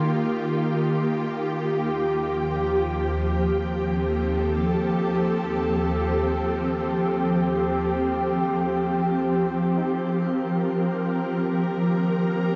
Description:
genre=ambient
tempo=free time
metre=none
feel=none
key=Eb lydian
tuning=A4 = 440 Hz
part: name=ethereal airy pad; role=sustained chords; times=0.0-12.6 s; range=Eb2 to Bb4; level=-24 LUFS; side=equal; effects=ensemble chorus, built-in reverb, shimmer reverb
part: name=soft round pluck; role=arpeggios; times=5.2-12.6 s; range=none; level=barely audible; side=none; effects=none
part: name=organ-like drone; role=drone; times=12.0-12.6 s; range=none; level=barely audible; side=none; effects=none
room=wet huge ambient reverb, RT60 7.3 s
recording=nothing above 7.8 kHz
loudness=-24 LUFS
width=mono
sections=0.0-8.6 A section; 8.6-12.6 B section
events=none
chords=0.0 Ebadd9; 1.7 F7/Eb; 8.6 Eb69

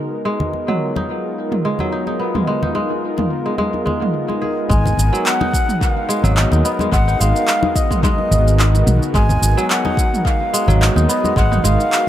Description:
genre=organic downtempo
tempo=108 BPM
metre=4/4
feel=swing 54% on 16ths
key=G# dorian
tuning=A4 = 441 Hz
part: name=warm analog pad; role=sustained chords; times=0.0-12.1 s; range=G#3 to A#4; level=-23 LUFS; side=left 1 dB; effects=chorus, tremolo, vintage 12-bit sampler grit, sidechain pumping
part: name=kora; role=arpeggios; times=0.0-12.1 s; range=F#3 to G#4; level=-22 LUFS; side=equal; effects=tape echo
part: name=congas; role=percussion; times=0.4-11.8 s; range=none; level=-25 LUFS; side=left 2 dB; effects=tape echo
part: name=organic electronic drum kit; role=drums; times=0.7-12.0 s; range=handclaps, shaker, toms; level=-22 LUFS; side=right 1 dB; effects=overdrive, low-pass filter on toms, low-pass filter on perc, low-pass filter on snare, tape echo
part: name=bansuri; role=melody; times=4.7-12.1 s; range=D#5 to G#5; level=-21 LUFS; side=equal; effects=tape echo
part: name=fretless electric bass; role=bass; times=4.7-11.8 s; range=G#1 to D#2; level=-15 LUFS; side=equal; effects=sidechain pumping
part: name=electronic kick drum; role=drums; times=4.7-11.5 s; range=none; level=-18 LUFS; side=equal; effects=overdrive
room=moderate spring reverb, RT60 1.9 s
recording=echo-heavy mix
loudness=-14 LUFS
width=side -12 dB against mid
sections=0.0-4.7 A section; 4.7-12.1 B section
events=none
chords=0.0 G#m9

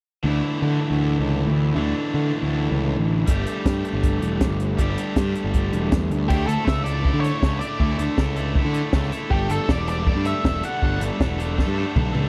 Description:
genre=indie rock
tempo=159 BPM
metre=4/4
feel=straight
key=unclear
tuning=A4 = 440 Hz
part: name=cranked stack guitar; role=riff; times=0.2-12.3 s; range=D3 to A4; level=-28 LUFS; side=equal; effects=overdrive
part: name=fuzz picked electric bass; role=bass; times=0.2-12.3 s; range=E1 to D3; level=-26 LUFS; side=equal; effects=overdrive
part: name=compact cocktail drum kit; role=drums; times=3.3-12.2 s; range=crash cymbal, hi-hat, kick drum, snare drum, toms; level=-25 LUFS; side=equal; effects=none
part: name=octave-fuzz lead guitar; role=melody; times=6.3-11.0 s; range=G4 to F#5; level=-31 LUFS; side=equal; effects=distortion, tape echo
room=little or no reverb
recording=dry, close 1970s-style studio recording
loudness=-22 LUFS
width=mono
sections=0.2-6.3 A section; 6.3-12.3 B section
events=drum fill 11.6-12.3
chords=0.2 Dsus2; 3.3 Gsus2; 6.3 Dsus2; 9.3 Gsus2

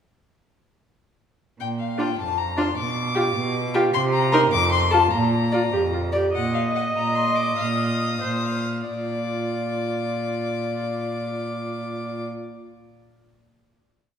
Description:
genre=quick classical-period movement for string quartet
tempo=84-104 BPM (dotted quarters)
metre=6/8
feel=straight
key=Bb major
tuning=A4 = 440 Hz
part: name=rich violin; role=melody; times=1.6-12.2 s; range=F5 to Eb6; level=-27 LUFS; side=left 6 dB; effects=none
part: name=rich cello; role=bass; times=1.6-12.2 s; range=F2 to C3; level=-26 LUFS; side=right 2 dB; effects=none
part: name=rich violin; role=second line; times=2.0-12.2 s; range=F4 to F5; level=-28 LUFS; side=left 1 dB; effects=none
part: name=warm viola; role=accompaniment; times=2.0-12.2 s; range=D4 to Eb5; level=-27 LUFS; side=right 2 dB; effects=none
room=wet scoring stage reverb, RT60 2.1 s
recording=studio reverb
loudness=-21 LUFS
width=side -8 dB against mid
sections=1.6-6.3 A section; 6.3-8.9 coda; 8.9-11.7 final chord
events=slowing down 5.7-8.9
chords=1.6 Bb; 2.8 G7/B (rootless); 3.9 Cm7; 4.5 F; 5.1 Bb5; 6.3 Eb5/Bb; 7.6 Bbsus24; 8.9 Bb

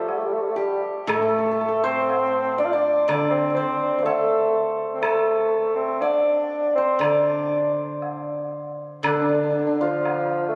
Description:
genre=chinese traditional, Chinese chamber ensemble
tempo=60 BPM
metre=2/4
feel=rubato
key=D yu mode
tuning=A4 = 441 Hz
part: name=mellow bassoon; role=melody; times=0.0-10.6 s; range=D3 to F4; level=-26 LUFS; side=equal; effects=none
part: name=hammered dulcimer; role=second line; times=0.0-10.6 s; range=D4 to D5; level=-27 LUFS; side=equal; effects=none
part: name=guzheng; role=accompaniment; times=0.0-10.6 s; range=A2 to G3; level=-30 LUFS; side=equal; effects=none
part: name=woodblock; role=percussion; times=0.1-10.3 s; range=none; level=-34 LUFS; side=equal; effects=none
room=wet concert hall reverb, RT60 2.6 s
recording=recorded on a phone in the room, club reverb, compression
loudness=-22 LUFS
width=mono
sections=0.0-9.0 A section; 9.0-10.6 B section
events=none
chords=none

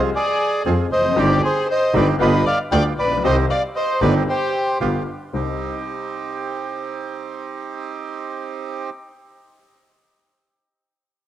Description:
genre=tango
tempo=116 BPM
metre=4/4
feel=rubato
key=C harmonic minor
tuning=A4 = 443 Hz
part: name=warm upright piano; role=accompaniment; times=0.0-8.9 s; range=G1 to Ab4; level=-26 LUFS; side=left 7 dB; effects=cassette tape
part: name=bandoneon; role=stabs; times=0.0-8.9 s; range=B3 to Ab4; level=-28 LUFS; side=right 7 dB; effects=cassette tape
part: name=rich double bass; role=bass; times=0.0-5.6 s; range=F1 to F2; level=-21 LUFS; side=right 2 dB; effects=none
part: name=warm violin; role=second line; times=0.1-4.8 s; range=G4 to D5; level=-26 LUFS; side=left 7 dB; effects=cassette tape
part: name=bandoneon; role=melody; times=0.2-4.8 s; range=G4 to G5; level=-20 LUFS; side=right 1 dB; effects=cassette tape
room=moderate spring reverb, RT60 2.5 s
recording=home recording on cassette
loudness=-18 LUFS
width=side -12 dB against mid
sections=0.0-5.3 A section; 5.3-9.5 B section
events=none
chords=0.0 Fm; 1.2 Cm/G; 2.2 G7; 3.2 Cm; 4.8 G7; 5.3 Cm

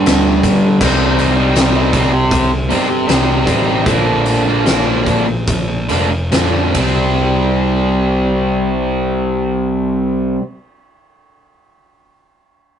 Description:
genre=quiet-loud alternative rock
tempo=68-80 BPM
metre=4/4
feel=straight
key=C minor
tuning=A4 = 435 Hz
part: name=distorted electric guitar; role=riff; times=0.0-10.4 s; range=G2 to Eb4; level=-14 LUFS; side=equal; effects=distortion
part: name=fuzz picked electric bass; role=bass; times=0.1-10.3 s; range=F1 to F2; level=-19 LUFS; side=equal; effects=overdrive
part: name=oversized low-tuned drum kit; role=drums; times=0.1-7.0 s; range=crash cymbal, hi-hat, kick drum, ride cymbal, snare drum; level=-19 LUFS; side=equal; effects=none
room=light reverb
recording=rough rehearsal-room recording, tube saturation, nothing above 10.9 kHz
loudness=-12 LUFS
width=side -8 dB against mid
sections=0.8-7.2 A section; 7.2-10.7 B section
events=slowing down 0.8-7.2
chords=0.0 G5; 0.8 Cm; 3.9 Bb; 6.8 C5

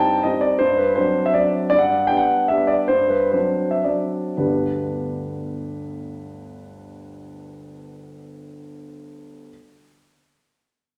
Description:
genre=classical, romantic triple-time dance for piano with dotted rhythms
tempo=104-171 BPM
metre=3/4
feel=rubato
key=G major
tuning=A4 = 440 Hz
part: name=warm concert grand piano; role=solo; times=0.0-9.5 s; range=G1 to A5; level=-22 LUFS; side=equal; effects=none
room=wet recital hall reverb, RT60 1.4 s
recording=none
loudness=-20 LUFS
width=mono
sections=0.0-4.4 A section; 4.4-7.4 B section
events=slowing down 1.2-4.4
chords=0.0 Cm/G; 0.6 D7/G; 1.7 G; 2.9 D7/G; 4.4 G

